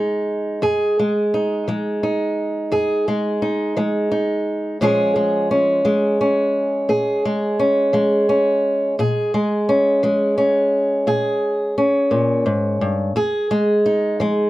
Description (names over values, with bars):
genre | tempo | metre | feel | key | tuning
blues | 58 BPM (dotted quarters) | 12/8 | straight | unclear | A4 = 442 Hz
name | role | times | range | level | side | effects
fingerpicked old ladder-braced acoustic guitar | solo | 0.0-14.5 s | F2 to Ab4 | -16 LUFS | equal | none
room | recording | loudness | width
moderate studio reverb, RT60 0.6 s | none | -16 LUFS | side -16 dB against mid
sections
0.0-14.5 A section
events
none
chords
0.0 Fm7; 4.8 Bbm7; 13.1 Fm7